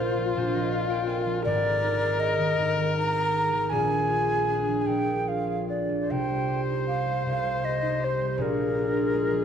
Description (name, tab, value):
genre	celtic folk, Celtic slow air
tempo	78 BPM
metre	3/4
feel	uneven beats, rubato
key	unclear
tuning	A4 = 440 Hz
part	wooden flute	melody	0.0-9.4 s	Bb4 to Bb5	-27 LUFS	equal	none
part	warm viola	second line	0.0-9.4 s	F4 to C5	-29 LUFS	left 3 dB	none
part	concert harp	accompaniment	0.0-9.4 s	Ab1 to Ab5	-27 LUFS	equal	none
room	moderate scoring stage reverb, RT60 1.9 s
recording	dark, warm production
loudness	-23 LUFS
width	side -8 dB against mid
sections	0.0-9.4 A section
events	harp fill 0.0-1.4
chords	0.0 Bbsus2; 1.4 Abadd9; 3.7 Bb7; 6.1 Cm; 8.4 Bb7